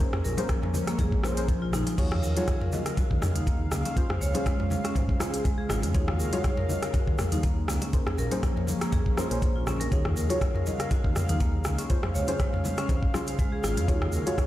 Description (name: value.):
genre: afro house.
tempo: 121 BPM.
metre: 4/4.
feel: swing 54% on 16ths.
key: Eb dorian.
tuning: A4 = 440 Hz.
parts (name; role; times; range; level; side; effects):
warm analog pad; sustained chords; 0.0-14.5 s; Db3 to F5; -37 LUFS; right 1 dB; chorus, vintage 12-bit sampler grit, sidechain pumping.
deep mellow chord stab; stabs; 0.0-14.5 s; Db4 to Db5; -34 LUFS; left 1 dB; chorus, sidechain pumping, ping-pong delay.
afro-pop drum kit; drums; 0.0-14.5 s; crash cymbal, hi-hat, rim click, toms; -32 LUFS; equal; none.
electronic kick drum; drums; 0.0-14.5 s; none; -26 LUFS; equal; none.
tube shaker; percussion; 0.0-14.5 s; none; -42 LUFS; right 2 dB; none.
marimba with medium hard mallets; arpeggios; 0.1-14.3 s; F3 to Eb5; -33 LUFS; equal; sidechain pumping, ping-pong delay.
congas; percussion; 0.1-14.4 s; none; -36 LUFS; left 2 dB; none.
dark detuned saw bass; bass; 0.2-14.2 s; Ab1 to F2; -30 LUFS; equal; sidechain pumping.
room: light reverb.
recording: played on a big sound system in a bare room, stone room reverb.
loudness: -24 LUFS.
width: side -14 dB against mid.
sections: 0.0-14.5 A section.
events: none.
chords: 0.0 Bbm9; 2.0 Ebm11; 4.0 Dbmaj7; 5.9 Ebm11; 7.9 Bbm9; 9.9 Ebm11; 11.9 Dbmaj7; 13.9 Ebm11.